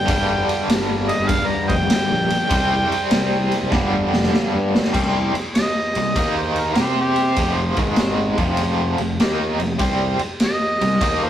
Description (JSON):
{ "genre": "blues rock power trio and southern rock", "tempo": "99 BPM", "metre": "4/4", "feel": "swing 67% on 8ths", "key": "unclear", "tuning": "A4 = 440 Hz", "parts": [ { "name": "overdriven harmonica", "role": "melody", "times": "0.0-11.3 s", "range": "F4 to Bb5", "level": "-22 LUFS", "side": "equal", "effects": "none" }, { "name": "biting overdriven guitar", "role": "riff", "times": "0.0-11.3 s", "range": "F2 to C5", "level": "-22 LUFS", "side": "equal", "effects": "tremolo" }, { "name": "fuzz fingered electric bass", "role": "bass", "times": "0.1-11.3 s", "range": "F1 to C3", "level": "-23 LUFS", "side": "equal", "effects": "overdrive" }, { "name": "raw garage drum kit", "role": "drums", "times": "0.1-11.2 s", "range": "crash cymbal, kick drum, ride cymbal, snare drum", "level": "-21 LUFS", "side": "equal", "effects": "none" } ], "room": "moderate stone room reverb, RT60 0.9 s", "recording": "rough rehearsal-room recording, tube saturation", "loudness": "-17 LUFS", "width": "side -11 dB against mid", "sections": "0.0-4.9 A section; 4.9-11.3 B section", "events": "harmonica solo 0.0-4.9; drum fill 3.7-4.9", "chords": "0.0 G5; 2.5 C5; 3.7 G5; 4.9 Cm; 6.2 Eb5; 6.8 C5; 7.4 F5; 7.7 Ab5; 8.3 F5; 9.8 Cm", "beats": "| 0.08 0.69 1.29 1.90 | 2.51 3.12 3.72 4.33 | 4.94 5.54 6.15 6.76 | 7.36 7.97 8.58 9.19 | 9.79 10.40 11.01" }